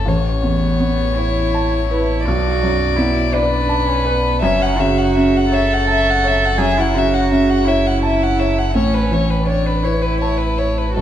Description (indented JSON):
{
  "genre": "neoclassical piano and strings",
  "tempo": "55 BPM (dotted quarters)",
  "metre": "6/8",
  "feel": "rubato",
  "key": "unclear",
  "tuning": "A4 = 441 Hz",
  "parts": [
    { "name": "warm violin", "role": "melody", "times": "0.0-11.0 s", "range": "A4 to F#5", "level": "-20 LUFS", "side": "left 4 dB", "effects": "none" },
    { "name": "rich cello", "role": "second line", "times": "0.0-11.0 s", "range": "B3 to A4", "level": "-21 LUFS", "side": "right 4 dB", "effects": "none" },
    { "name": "warm upright piano", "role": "accompaniment", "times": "0.0-11.0 s", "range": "A1 to A5", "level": "-19 LUFS", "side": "right 1 dB", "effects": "none" },
    { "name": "sub bass with octave", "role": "bass", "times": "0.0-11.0 s", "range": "F#1 to B1", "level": "-21 LUFS", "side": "equal", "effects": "none" }
  ],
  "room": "wet recital hall reverb, RT60 1.6 s",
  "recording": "recorded in a church or concert hall, nothing above 10.9 kHz",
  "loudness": "-14 LUFS",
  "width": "side -10 dB against mid",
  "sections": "0.0-11.0 A section",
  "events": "none",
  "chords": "0.1 Aadd9; 2.3 Bm7; 4.4 F#m7; 8.8 Aadd9",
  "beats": "| 0.06 1.17 | 2.26 3.34 | 4.43 5.52 | 6.59 7.67 | 8.75 9.84 | 10.97"
}